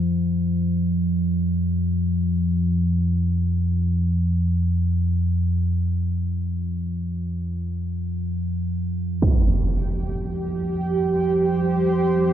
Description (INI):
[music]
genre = dark ambient drone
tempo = free time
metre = none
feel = none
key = unclear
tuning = A4 = 436 Hz
[part]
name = deep rumbling drone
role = drone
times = 0.0-12.3 s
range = F2 to F3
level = -21 LUFS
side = equal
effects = built-in reverb
[part]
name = granular cloud pad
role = sustained chords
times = 10.0-12.3 s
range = G4 to C5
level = -23 LUFS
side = right 2 dB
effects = built-in reverb, shimmer reverb
[part]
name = impact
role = percussion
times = 9.2-9.4 s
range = none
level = -22 LUFS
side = right 1 dB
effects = low-pass filter on sfx
[sound]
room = wet huge ambient reverb, RT60 7.4 s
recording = nothing above 7.5 kHz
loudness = -20 LUFS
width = side -10 dB against mid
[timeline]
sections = 0.0-9.2 A section; 9.2-12.3 B section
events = none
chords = 0.0 N.C.; 9.2 Fsus2